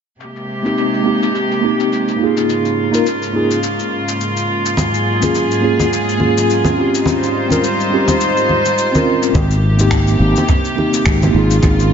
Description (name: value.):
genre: sunset chillout.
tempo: 105 BPM.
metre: 4/4.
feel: swing 56% on 16ths.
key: Ab major.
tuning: A4 = 440 Hz.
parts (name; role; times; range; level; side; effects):
warm studio string section; sustained chords; 0.2-11.9 s; Ab2 to C5; -18 LUFS; equal; none.
electronic shaker and finger snaps; drums; 0.2-11.9 s; none; -25 LUFS; left 4 dB; overdrive, low-pass filter on perc, low-pass filter on snare, low-pass filter on room, dub echo.
mellow tine electric piano; accompaniment; 0.6-11.9 s; Bb3 to Bb4; -16 LUFS; right 1 dB; medium stereo tremolo, auto-pan, dub echo.
congas; percussion; 4.8-11.8 s; none; -21 LUFS; right 1 dB; dub echo.
sustaining fretless electric bass; bass; 9.3-11.9 s; Ab1; -13 LUFS; equal; none.
electronic kick drum; drums; 9.3-11.8 s; none; -17 LUFS; equal; none.
room: moderate echo chamber reverb, RT60 1.7 s.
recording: echo-heavy mix, nothing above 7.5 kHz.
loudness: -13 LUFS.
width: side -7 dB against mid.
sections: 0.2-9.3 A section; 9.3-11.9 B section.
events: none.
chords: 0.2 Abmaj9; 2.2 Db6/Ab; 4.8 Gbmaj9/Ab; 7.1 Eb13/Ab; 9.3 Abmaj9; 11.3 Db6/Ab.